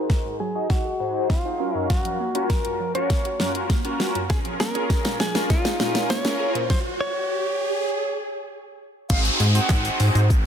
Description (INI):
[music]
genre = dance-pop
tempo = 100 BPM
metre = 4/4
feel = straight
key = unclear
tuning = A4 = 445 Hz
[part]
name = direct-recorded clean electric guitar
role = melody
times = 0.0-8.2 s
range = F4 to Db5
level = -27 LUFS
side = left 1 dB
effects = low-pass filter, ping-pong delay
[part]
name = big bright polysynth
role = accompaniment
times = 0.0-10.2 s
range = Gb3 to F5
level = -27 LUFS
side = left 1 dB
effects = chorus, phaser, sidechain pumping, low-pass filter
[part]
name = soft round pluck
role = arpeggios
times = 0.0-6.7 s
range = Gb2 to Ab4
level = -33 LUFS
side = right 4 dB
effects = chorus, sidechain pumping, low-pass filter, ping-pong delay
[part]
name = riser and downlifter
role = sound effects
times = 1.3-10.5 s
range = none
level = -30 LUFS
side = right 2 dB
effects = none
[part]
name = smooth R&B drum kit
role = drums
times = 0.1-10.4 s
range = crash cymbal, handclaps, hi-hat, kick drum, shaker, snare drum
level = -23 LUFS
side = equal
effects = none
[part]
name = concert flute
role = melody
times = 9.1-10.0 s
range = F5 to Gb5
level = -31 LUFS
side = right 2 dB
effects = ping-pong delay
[part]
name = chorused synth bass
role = bass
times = 9.1-10.5 s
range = Ab1 to Ab2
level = -20 LUFS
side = equal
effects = sidechain pumping
[sound]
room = light reverb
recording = dense, heavily limited modern master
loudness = -20 LUFS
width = side -8 dB against mid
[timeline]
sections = 0.0-9.1 A section; 9.1-10.5 B section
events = build-up 0.0-9.1; drum fill 0.0-6.7; filter sweep 0.0-9.1; riser 1.3-9.1; stop 6.7-9.1; drop 9.1-10.5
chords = 0.0 Ab7; 1.6 Gbmaj7; 4.3 Bbm7; 6.7 N.C.; 9.1 Ab7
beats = 0.10 0.70 1.30 | 1.90 2.50 3.10 3.70 | 4.30 4.90 5.50 6.10 | 6.70 7.30 7.90 8.50 | 9.10 9.70 10.30